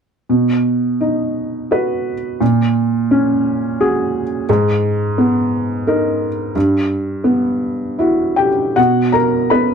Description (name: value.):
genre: neoclassical minimalist piano.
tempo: 74-88 BPM.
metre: 3/4.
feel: rubato.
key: B major.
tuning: A4 = 440 Hz.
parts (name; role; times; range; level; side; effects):
felt-muted upright piano; solo; 0.3-9.7 s; G2 to B5; -14 LUFS; equal; none.
room: light reverb.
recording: dark, warm production.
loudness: -14 LUFS.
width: side -6 dB against mid.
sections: 0.3-8.8 A section.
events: none.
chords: 0.3 B; 2.4 F#add9/A#; 4.5 G#madd9; 6.5 Emadd9/G; 8.8 B5.